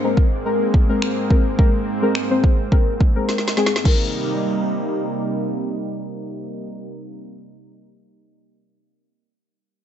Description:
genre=dance-pop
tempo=106 BPM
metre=4/4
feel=straight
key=C minor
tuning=A4 = 440 Hz
part: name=deep mellow chord stab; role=accompaniment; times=0.0-7.6 s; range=Eb3 to C5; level=-22 LUFS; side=left 3 dB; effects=chorus, sidechain pumping, low-pass filter
part: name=lush unison pad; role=sustained chords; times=0.0-6.9 s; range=Ab2 to Eb4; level=-24 LUFS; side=right 1 dB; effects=chorus, sidechain pumping, low-pass filter
part: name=deep house drum kit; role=drums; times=0.2-4.0 s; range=crash cymbal, finger snaps, kick drum, snare drum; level=-17 LUFS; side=equal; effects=none
room=light reverb, digital ambience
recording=nothing above 7.9 kHz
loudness=-17 LUFS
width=side -10 dB against mid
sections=0.0-3.9 A section; 3.9-6.1 B section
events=filter sweep 0.0-3.9; drum fill 3.3-3.9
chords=0.0 Abadd9; 3.9 Cm7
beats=0.46 1.02 | 1.59 2.15 2.72 3.29 | 3.85 4.42 4.98 5.55

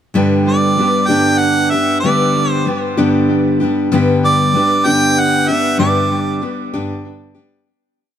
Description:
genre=rock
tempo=64 BPM (dotted quarters)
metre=6/8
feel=straight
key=unclear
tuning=A4 = 441 Hz
part: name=picked steel-string acoustic guitar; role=accompaniment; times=0.1-7.7 s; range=G2 to G4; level=-14 LUFS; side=left 1 dB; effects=tape echo
part: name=clear harmonica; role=melody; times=0.5-6.5 s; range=D5 to G5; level=-16 LUFS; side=right 2 dB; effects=tape echo
room=light reverb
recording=echo-heavy mix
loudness=-12 LUFS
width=side -9 dB against mid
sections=0.2-7.7 verse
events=fade-out 5.8-7.7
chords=0.2 G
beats=| 0.16 1.10 | 2.04 2.98 | 3.92 4.86 | 5.80 6.74

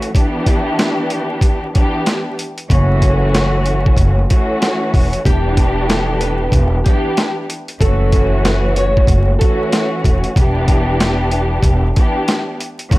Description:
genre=hip hop, boom-bap hip-hop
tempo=94 BPM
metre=4/4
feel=swing 62% on 16ths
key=E dorian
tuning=A4 = 440 Hz
part: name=warm studio string section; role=accompaniment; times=0.0-13.0 s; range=E3 to G4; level=-18 LUFS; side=equal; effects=high-pass filter, low-pass filter
part: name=boom bap sampler-style drum kit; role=drums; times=0.0-13.0 s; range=hi-hat, kick drum, snare drum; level=-15 LUFS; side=equal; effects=none
part: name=upright bass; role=bass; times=2.7-13.0 s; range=E1 to F#1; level=-16 LUFS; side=equal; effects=tube saturation
part: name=nylon-string guitar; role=melody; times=5.3-9.7 s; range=G4 to C#5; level=-22 LUFS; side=right 1 dB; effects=high-pass filter, low-pass filter, analog delay
room=small room ambience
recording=dry, gritty hardware recording, vinyl crackle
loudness=-13 LUFS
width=side -19 dB against mid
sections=0.0-13.0 A section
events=break 0.0-2.7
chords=0.1 Em7; 2.7 F#m7; 5.3 Em7; 7.8 F#m7; 10.4 Em7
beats=| 0.15 0.79 1.42 2.06 | 2.70 3.34 3.98 4.62 | 5.25 5.89 6.53 7.17 | 7.81 8.45 9.08 9.72 | 10.36 11.00 11.64 12.28 | 12.91

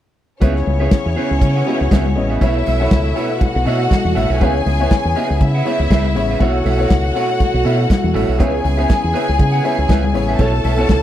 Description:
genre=disco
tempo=120 BPM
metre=4/4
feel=swing 56% on 16ths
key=unclear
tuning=A4 = 439 Hz
part: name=clear studio string section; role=second line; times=0.4-11.0 s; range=C#4 to A5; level=-21 LUFS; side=left 1 dB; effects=slapback echo
part: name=clear concert grand piano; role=accompaniment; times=0.4-11.0 s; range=B2 to E5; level=-22 LUFS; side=left 4 dB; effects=none
part: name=electric guitar at the edge of break-up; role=accompaniment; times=0.4-10.9 s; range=G#4 to F#5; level=-24 LUFS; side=right 8 dB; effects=spring reverb
part: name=fingered electric bass with an envelope filter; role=bass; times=0.4-11.0 s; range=A1 to C#3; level=-18 LUFS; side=equal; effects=none
part: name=warm soul drum kit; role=drums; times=0.4-11.0 s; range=hi-hat, kick drum, snare drum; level=-14 LUFS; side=equal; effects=none
part: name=congas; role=percussion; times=0.4-11.0 s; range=none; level=-25 LUFS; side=left 6 dB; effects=none
room=little or no reverb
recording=none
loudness=-14 LUFS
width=side -12 dB against mid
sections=0.4-11.0 A section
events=none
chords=0.4 C#m7; 2.4 B9sus4; 4.4 C#m7; 6.4 B9sus4; 8.4 C#m7; 10.4 B9sus4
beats=| 0.42 0.92 1.42 1.92 | 2.41 2.91 3.41 3.91 | 4.41 4.91 5.41 5.91 | 6.40 6.90 7.40 7.90 | 8.40 8.90 9.40 9.89 | 10.39 10.89

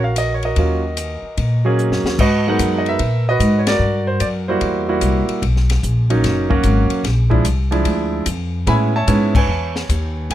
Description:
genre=jazz piano trio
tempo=148 BPM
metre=4/4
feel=swing 66% on 8ths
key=G# minor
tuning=A4 = 441 Hz
part: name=clear concert grand piano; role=melody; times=0.0-10.3 s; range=E#3 to B5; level=-19 LUFS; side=right 2 dB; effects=none
part: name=upright bass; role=bass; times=0.0-10.3 s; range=F#1 to Bb2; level=-18 LUFS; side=left 1 dB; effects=none
part: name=compact cocktail drum kit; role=drums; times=0.2-10.3 s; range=crash cymbal, hi-hat, kick drum, ride cymbal, snare drum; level=-23 LUFS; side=left 2 dB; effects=none
room=little or no reverb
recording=close, detailed microphones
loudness=-15 LUFS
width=side -12 dB against mid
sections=0.0-2.2 A section; 2.2-10.3 B section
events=drum fill 1.8-2.2; band accent 3.6, 9.3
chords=0.0 Ebm7; 2.2 G#m9; 3.8 C7#11; 5.4 Bmaj9; 7.0 A#7#11; 8.7 Amaj9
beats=0.15 | 0.56 0.96 1.37 1.77 | 2.18 2.58 2.99 3.40 | 3.80 4.21 4.61 5.02 | 5.42 5.83 6.24 6.64 | 7.05 7.45 7.86 8.27 | 8.67 9.08 9.49 9.89 | 10.30

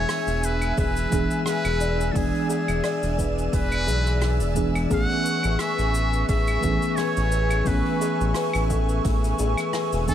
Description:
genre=sunset chillout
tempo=87 BPM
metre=4/4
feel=swing 55% on 16ths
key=A major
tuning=A4 = 440 Hz
part: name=trumpet with metal mute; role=melody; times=0.0-10.1 s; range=G#4 to F#5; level=-29 LUFS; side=equal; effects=tape echo
part: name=mellow FM electric piano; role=accompaniment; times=0.0-10.1 s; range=E3 to G#5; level=-28 LUFS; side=right 1 dB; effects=chorus, auto-pan
part: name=airy breathy pad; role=sustained chords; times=0.0-10.1 s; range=D4 to E6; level=-31 LUFS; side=equal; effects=chorus, vintage 12-bit sampler grit
part: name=round analog bass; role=bass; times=0.0-10.1 s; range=E1 to B1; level=-25 LUFS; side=equal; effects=none
part: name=wind-like tuned noise texture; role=texture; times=0.0-10.1 s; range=E5 to E6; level=-37 LUFS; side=right 1 dB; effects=built-in reverb
part: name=vintage brush drum kit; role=drums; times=0.1-10.1 s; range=cabasa, claves, hi-hat, rim click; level=-34 LUFS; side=right 1 dB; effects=none
part: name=buzzing kalimba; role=arpeggios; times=0.8-9.7 s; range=G#4 to D5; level=-31 LUFS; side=left 5 dB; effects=ping-pong delay
part: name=electronic kick drum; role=drums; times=0.8-10.1 s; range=none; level=-27 LUFS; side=equal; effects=none
room=light reverb, studio ambience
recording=none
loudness=-21 LUFS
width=side -10 dB against mid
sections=0.0-10.1 A section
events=none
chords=0.0 E7; 4.9 Amaj9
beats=0.09 0.78 1.47 | 2.15 2.85 3.53 4.22 | 4.91 5.60 6.29 6.98 | 7.67 8.36 9.05 9.74

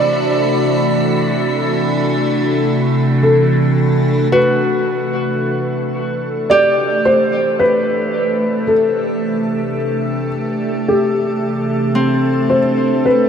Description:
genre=ambient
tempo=55 BPM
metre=4/4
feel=straight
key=A dorian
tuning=A4 = 443 Hz
part: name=felt-muted upright piano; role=melody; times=0.0-13.3 s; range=G4 to D5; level=-17 LUFS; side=equal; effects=diffuse ambient delay
part: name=evolving wavetable pad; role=sustained chords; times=0.0-13.3 s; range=C3 to G4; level=-18 LUFS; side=equal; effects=phaser, built-in reverb
part: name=Celtic harp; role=arpeggios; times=0.0-13.3 s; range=C4 to G4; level=-21 LUFS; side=left 1 dB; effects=diffuse ambient delay
part: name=organ-like drone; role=drone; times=0.0-13.3 s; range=A3 to A4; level=-22 LUFS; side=equal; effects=ensemble chorus, built-in reverb
part: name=wind-like tuned noise texture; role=texture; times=0.0-4.4 s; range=B5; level=-28 LUFS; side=right 2 dB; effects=built-in reverb
room=wet huge ambient reverb, RT60 7.5 s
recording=in a vast, echoing space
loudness=-13 LUFS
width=side -7 dB against mid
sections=0.0-4.3 A section; 4.3-13.3 B section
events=fade-in on ambient pad 4.3-13.3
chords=0.0 D13; 4.3 Am9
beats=1.06 2.15 3.24 | 4.33 5.42 6.51 7.61 | 8.70 9.79 10.88 11.97 | 13.06

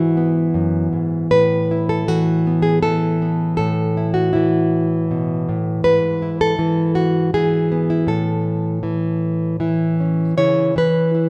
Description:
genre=folk, solo fingerstyle acoustic guitar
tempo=80 BPM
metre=3/4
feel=straight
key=A major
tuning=A4 = 440 Hz
part: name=nylon-string guitar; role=solo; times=0.0-11.3 s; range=F#2 to C#5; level=-18 LUFS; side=equal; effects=none
room=moderate concert hall reverb, RT60 1.9 s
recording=none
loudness=-18 LUFS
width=mono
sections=0.0-10.4 A section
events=none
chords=0.0 Eadd9/G#; 1.3 Asus2; 5.8 E/G#; 8.1 A; 10.4 C#m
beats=0.55 | 1.32 2.08 2.84 | 3.59 4.34 5.09 | 5.84 6.59 7.34 | 8.09 8.84 9.61 | 10.38 11.14

